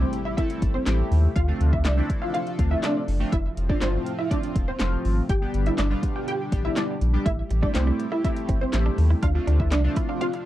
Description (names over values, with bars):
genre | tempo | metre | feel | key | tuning
dance-pop | 122 BPM | 4/4 | straight | A minor | A4 = 441 Hz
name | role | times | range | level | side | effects
chorused polysynth | accompaniment | 0.0-10.3 s | F3 to A4 | -31 LUFS | left 1 dB | phaser, sidechain pumping
chorused pulse-width pad | sustained chords | 0.0-10.5 s | A2 to A4 | -34 LUFS | left 1 dB | sidechain pumping
warm sub bass | bass | 0.0-9.9 s | E1 to D#2 | -22 LUFS | equal | sidechain pumping
impact | sound effects | 0.0-1.4 s | none | -39 LUFS | equal | none
deep house drum kit | drums | 0.1-10.4 s | handclaps, hi-hat, kick drum, snare drum | -27 LUFS | equal | overdrive
wide unison pluck | melody | 0.3-10.3 s | C4 to G5 | -29 LUFS | right 1 dB | lush chorus, slapback echo
group handclap | percussion | 0.9-9.8 s | none | -41 LUFS | left 4 dB | none
direct-recorded clean electric guitar | riff | 7.3-10.4 s | G3 to E4 | -34 LUFS | right 6 dB | wide subtle chorus
room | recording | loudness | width
little or no reverb | dry, close 1970s-style studio recording | -21 LUFS | side -14 dB against mid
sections
0.0-10.5 A section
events
impact 0.0-1.4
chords
0.0 Am7; 1.4 Dm7; 3.3 F; 5.3 G; 7.3 Am7; 9.2 Dm7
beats
0.38 0.87 | 1.36 1.85 2.34 2.83 | 3.33 3.82 4.31 4.80 | 5.29 5.79 6.28 6.77 | 7.26 7.75 8.24 8.74 | 9.23 9.72 10.21